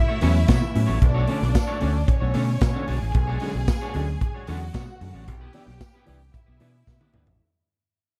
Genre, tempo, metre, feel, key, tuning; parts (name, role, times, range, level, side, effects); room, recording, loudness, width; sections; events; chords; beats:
disco; 113 BPM; 4/4; straight; A4 = 439 Hz
clear symphonic string section; second line; 0.0-7.4 s; C#4 to G#5; -35 LUFS; equal; slapback echo
electric guitar at the edge of break-up; accompaniment; 0.1-7.3 s; G#3 to C#5; -36 LUFS; equal; analog chorus
warm baby grand piano; accompaniment; 0.2-7.3 s; A2 to D4; -32 LUFS; equal
overdriven fingered electric bass; bass; 0.2-7.4 s; A1 to B2; -26 LUFS; equal
modern studio drum kit; drums; 0.2-7.4 s; hi-hat, kick drum, snare drum, toms; -25 LUFS; equal
tambourine; percussion; 0.5-7.0 s; -48 LUFS; equal
small room ambience; dark, warm production; -23 LUFS; mono
0.0-7.4 A section
fade-out 0.0-7.4; drum fill 6.9-7.4
0.0 A6; 1.0 Bm9; 2.9 E13 (rootless); 5.3 Cmaj7/B
0.49 | 1.02 1.55 2.08 2.62 | 3.15 3.68 4.21 4.74 | 5.27 5.81 6.34 6.87